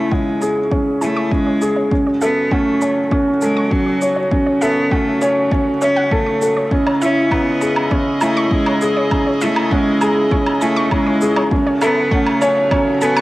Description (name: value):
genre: piano and strings electronica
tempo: 100 BPM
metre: 4/4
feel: straight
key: C# minor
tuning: A4 = 445 Hz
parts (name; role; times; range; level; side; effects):
- bright cello; melody; 0.0-13.2 s; F#3 to C#4; -22 LUFS; equal; cassette tape
- rich string quartet; sustained chords; 0.0-13.2 s; C#3 to D#5; -26 LUFS; equal; low-pass filter, cassette tape
- felt-muted upright piano; riff; 0.0-13.2 s; C#4 to C#5; -16 LUFS; equal; cassette tape, analog delay
- round analog bass; bass; 0.0-13.0 s; none; barely audible; none; none
- wide unison pluck; arpeggios; 0.1-13.2 s; C#5 to C#6; -27 LUFS; right 1 dB; sidechain pumping, cassette tape, analog delay
- electronic kick drum; drums; 0.1-12.8 s; none; -20 LUFS; equal; overdrive, cassette tape
- shaker and woodblock; drums; 0.4-13.2 s; none; -24 LUFS; equal; overdrive, cassette tape
room: moderate spring reverb, RT60 1.9 s, small room ambience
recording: home recording on cassette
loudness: -14 LUFS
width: side -18 dB against mid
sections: 0.0-13.2 A section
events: build-up 0.0-13.2; filter sweep on string quartet 0.0-13.2; filter sweep on synth arpeggio sound 0.0-13.2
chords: 0.0 C#m; 1.9 F#m; 6.7 C#madd9; 11.5 F#m